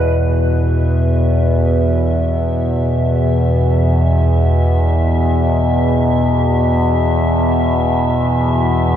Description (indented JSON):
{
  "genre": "dark ambient drone",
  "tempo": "free time",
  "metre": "none",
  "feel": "none",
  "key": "unclear",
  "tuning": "A4 = 440 Hz",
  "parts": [
    { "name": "overtone-sweeping drone", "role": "drone", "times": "0.0-9.0 s", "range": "E2 to B2", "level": "-13 LUFS", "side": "equal", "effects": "chorus, built-in reverb" },
    { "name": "icy glass pad", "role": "texture", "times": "0.0-9.0 s", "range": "B4 to E5", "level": "-27 LUFS", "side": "left 1 dB", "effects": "chorus, built-in reverb" }
  ],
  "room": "wet huge ambient reverb, RT60 8.4 s",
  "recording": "cassette tape",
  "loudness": "-13 LUFS",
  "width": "side -10 dB against mid",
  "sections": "0.2-9.0 A section",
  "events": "fade-in on ambient pad 0.2-9.0",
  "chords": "0.2 E5",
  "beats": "free time"
}